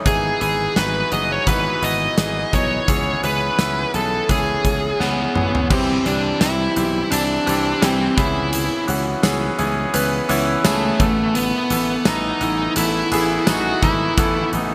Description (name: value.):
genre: 1980s-style pop.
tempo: 85 BPM.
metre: 4/4.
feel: swing 55% on 16ths.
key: unclear.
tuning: A4 = 440 Hz.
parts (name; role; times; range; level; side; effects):
bright concert grand piano; accompaniment; 0.0-14.7 s; E3 to B4; -25 LUFS; equal; none.
smooth overdriven lead guitar; melody; 0.1-14.5 s; A3 to D#5; -23 LUFS; equal; delay.
slap bass; bass; 0.1-14.7 s; F#1 to C#2; -28 LUFS; equal; none.
huge arena drum kit; drums; 0.1-14.7 s; crash cymbal, hi-hat, kick drum, snare drum, tambourine, toms; -26 LUFS; equal; none.
room: moderate lush hall reverb, RT60 2.4 s.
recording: bright 1980s-style digital production.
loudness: -19 LUFS.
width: mono.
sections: 0.0-5.7 A section; 5.7-14.7 B section.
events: drum fill 5.0-5.7.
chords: 0.1 Emaj7; 2.9 C#m7; 5.7 C; 8.2 C#m7; 11.0 Asus2.